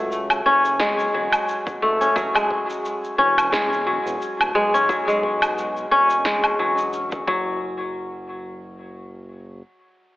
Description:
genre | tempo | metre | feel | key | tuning
organic downtempo | 88 BPM | 4/4 | swing 55% on 16ths | unclear | A4 = 440 Hz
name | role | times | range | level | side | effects
kora | arpeggios | 0.0-9.5 s | F#3 to C#4 | -19 LUFS | left 1 dB | diffuse ambient delay
smooth synth bass | bass | 0.0-9.6 s | D1 to C#2 | -35 LUFS | equal | sidechain pumping
electronic shaker, woodblock and snare drum | drums | 0.1-7.2 s | none | -24 LUFS | right 1 dB | overdrive
electronic kick drum | drums | 0.8-7.4 s | none | -33 LUFS | equal | overdrive
room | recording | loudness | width
wet plate reverb, RT60 2.7 s | dreamy mix soaked in reverb, telephone sound | -18 LUFS | side -18 dB against mid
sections
0.0-7.6 A section; 7.6-10.2 B section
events
none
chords
0.0 F#madd9; 2.2 Eadd9; 7.3 N.C.

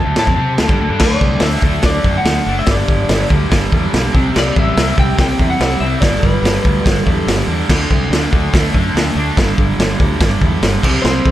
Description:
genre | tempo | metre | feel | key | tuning
garage rock duo or trio | 144 BPM | 4/4 | straight | D mixolydian | A4 = 440 Hz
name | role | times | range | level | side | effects
electric slide guitar | melody | 0.0-7.4, 11.0-11.3 s | A4 to A5 | -20 LUFS | left 2 dB | digital delay
fuzz guitar | riff | 0.0-11.3 s | G2 to C5 | -18 LUFS | right 1 dB | distortion
fuzz fingered electric bass | bass | 0.0-11.3 s | F#1 to C3 | -19 LUFS | equal | overdrive
raw garage drum kit | drums | 0.2-11.3 s | crash cymbal, hi-hat, kick drum, snare drum | -15 LUFS | equal | none
room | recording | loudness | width
small room ambience | none | -12 LUFS | side -13 dB against mid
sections
0.0-1.0 A section; 1.0-11.3 B section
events
electric slide guitar solo 0.0-1.0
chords
0.0 D5; 1.0 D; 2.7 G5; 4.1 C; 6.0 G; 7.7 D5; 9.4 G5

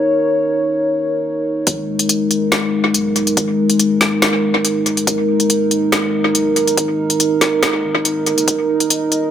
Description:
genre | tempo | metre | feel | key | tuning
deep dubstep | 141 BPM | 4/4 | half-time | G# minor | A4 = 440 Hz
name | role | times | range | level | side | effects
dark analog pad | sustained chords | 0.0-9.3 s | G#3 to D#5 | -16 LUFS | equal | chorus
soft dub sub bass | bass | 1.7-9.3 s | D#1 to B1 | -33 LUFS | left 1 dB | high-pass filter
deep house drum kit | drums | 1.7-9.2 s | hi-hat, snare drum | -16 LUFS | left 1 dB | studio reverb, tape echo
electronic kick drum | drums | 1.7-8.6 s | none | -23 LUFS | left 1 dB | high-pass filter on kick, studio reverb
room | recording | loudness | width
moderate spring reverb, RT60 1.5 s | echo-heavy mix | -14 LUFS | side -9 dB against mid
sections
0.0-1.7 A section; 1.7-9.3 B section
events
build-up 1.7-9.3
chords
0.0 D#5; 1.7 G#madd9; 8.5 D#5

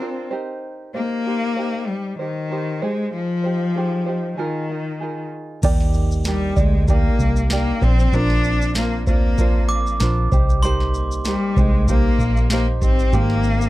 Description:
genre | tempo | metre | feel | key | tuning
acoustic pop | 96 BPM | 4/4 | swing 55% on 16ths | Eb major | A4 = 440 Hz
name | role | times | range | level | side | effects
clear cello | melody | 0.0-13.7 s | Eb3 to D4 | -23 LUFS | left 3 dB | none
tenor ukulele | accompaniment | 0.0-13.7 s | D4 to D5 | -28 LUFS | right 4 dB | none
electric guitar at the edge of break-up | arpeggios | 5.6-13.7 s | F3 to Eb4 | -32 LUFS | right 5 dB | none
vintage muted fingered electric bass | bass | 5.6-13.7 s | Ab1 to Eb2 | -20 LUFS | equal | none
booming analog drum machine | drums | 5.6-13.7 s | crash cymbal, kick drum, shaker, snare drum | -20 LUFS | equal | none
group handclap | percussion | 6.3-12.7 s | none | -38 LUFS | left 4 dB | none
glockenspiel with brass mallets | second line | 9.7-11.1 s | C6 to D6 | -28 LUFS | right 2 dB | none
room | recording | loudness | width
little or no reverb | dark, warm production | -17 LUFS | side -17 dB against mid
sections
0.0-5.6 A section; 5.6-13.7 B section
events
none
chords
0.3 Cm7; 2.8 Abmaj7; 4.4 Bb7sus4; 5.6 Ebmaj7; 7.8 Bbadd9; 10.3 Cm7; 12.8 Abmaj7

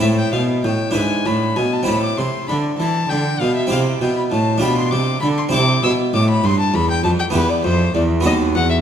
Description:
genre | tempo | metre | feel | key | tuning
classical, baroque-style sonata movement with continuo | 66 BPM (dotted quarters) | 6/8 | straight | A minor | A4 = 440 Hz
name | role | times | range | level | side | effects
warm violin | melody | 0.0-8.8 s | B4 to E6 | -22 LUFS | left 3 dB | none
harpsichord | accompaniment | 0.0-8.8 s | D#2 to B4 | -19 LUFS | right 1 dB | none
warm cello | bass | 0.0-8.8 s | D#2 to E3 | -20 LUFS | right 1 dB | none
room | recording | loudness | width
wet scoring stage reverb, RT60 1.8 s | none | -15 LUFS | side -8 dB against mid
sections
0.0-8.8 A section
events
none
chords
0.0 Am; 1.0 E7/G#; 1.9 Am; 3.7 C; 4.6 G7/B; 5.5 C; 7.3 Em; 8.3 B7/D#

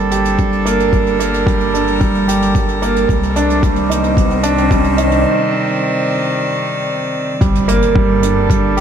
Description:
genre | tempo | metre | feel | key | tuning
piano and strings electronica | 111 BPM | 4/4 | straight | G minor | A4 = 440 Hz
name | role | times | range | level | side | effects
rich string quartet | sustained chords | 0.0-8.8 s | C3 to D5 | -18 LUFS | equal | none
warm grand piano | riff | 0.0-8.8 s | G3 to G4 | -16 LUFS | right 3 dB | digital delay
dark detuned saw bass | bass | 0.0-8.8 s | G1 to C2 | -21 LUFS | left 1 dB | sidechain pumping
riser and impact | sound effects | 1.2-8.8 s | none | -24 LUFS | left 1 dB | none
hi-hat | drums | 0.1-8.8 s | none | -29 LUFS | right 5 dB | high-pass filter on hats, high-pass filter on room
electronic kick drum | drums | 0.4-8.6 s | none | -16 LUFS | left 1 dB | none
room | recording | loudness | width
moderate echo chamber reverb, RT60 2.1 s | none | -12 LUFS | side -8 dB against mid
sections
0.0-7.4 A section; 7.4-8.8 B section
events
build-up 0.0-7.4; riser 1.2-5.3; break 5.3-7.4; drop 7.4-8.8; impact 7.4-8.8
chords
0.0 Gmadd9; 3.1 Cmadd9; 7.4 Gmadd9

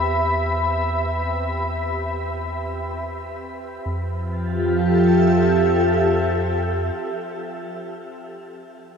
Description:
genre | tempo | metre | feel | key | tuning
ambient | free time | none | none | F lydian | A4 = 441 Hz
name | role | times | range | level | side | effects
glassy FM pad | sustained chords | 0.0-7.6 s | F3 to B5 | -21 LUFS | equal | ensemble chorus, built-in reverb, shimmer reverb
round analog bass | bass | 0.0-6.9 s | E2 to F2 | -26 LUFS | equal | none
bowed-like drone | drone | 0.0-6.9 s | F3 to F4 | -36 LUFS | equal | built-in reverb
room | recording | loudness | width
wet huge ambient reverb, RT60 7.5 s | none | -19 LUFS | side -6 dB against mid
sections
0.0-3.9 A section; 3.9-7.4 B section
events
none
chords
0.0 Em; 3.9 Fmaj7

